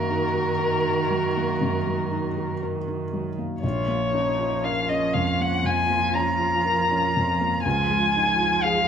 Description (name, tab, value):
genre	neoclassical piano and strings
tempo	60 BPM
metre	4/4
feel	rubato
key	Bb minor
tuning	A4 = 441 Hz
part	muted violin	melody	0.0-8.9 s	Bb4 to Bb5	-23 LUFS	left 2 dB	none
part	muted cello	second line	0.0-8.9 s	Eb3 to F3	-30 LUFS	right 9 dB	none
part	felt-muted upright piano	accompaniment	0.0-8.9 s	Bb1 to Bb4	-27 LUFS	left 2 dB	none
part	muted viola	accompaniment	0.0-8.9 s	Db4 to Ab4	-32 LUFS	right 4 dB	none
room	moderate large studio reverb, RT60 0.9 s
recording	band playing live in one room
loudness	-21 LUFS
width	side -8 dB against mid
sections	0.0-8.9 A section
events	none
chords	0.0 Ebm/Gb; 3.6 Bbm; 7.6 Dbadd9